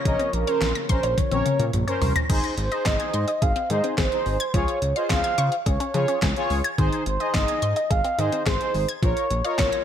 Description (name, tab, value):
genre	synth-pop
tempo	107 BPM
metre	4/4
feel	straight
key	unclear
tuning	A4 = 438 Hz
part	mellow horn-like synth lead	melody	0.0-9.8 s	Bb4 to F5	-26 LUFS	right 2 dB	chorus, ping-pong delay
part	sweeping resonant pad	sustained chords	0.0-2.3 s	Db3 to F4	-35 LUFS	left 2 dB	chorus
part	analog synth brass	accompaniment	0.1-9.8 s	Db4 to Eb5	-28 LUFS	left 2 dB	chorus
part	wide unison pluck	arpeggios	0.1-9.8 s	Db3 to Bb6	-30 LUFS	left 4 dB	phaser, ping-pong delay
part	fat analog bass	bass	0.1-9.7 s	Ab1 to Db3	-26 LUFS	equal	none
part	detuned 8-bit digital drum machine	drums	0.1-9.8 s	crash cymbal, handclaps, hi-hat, kick drum, snare drum, toms	-25 LUFS	equal	gated reverb
room	light reverb, digital ambience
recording	none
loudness	-20 LUFS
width	side -9 dB against mid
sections	0.0-2.3 A section; 2.3-9.8 B section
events	drum fill 1.2-2.3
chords	0.0 Bbmadd9; 2.3 Ab; 4.5 Db; 6.8 Ab; 9.0 Bbm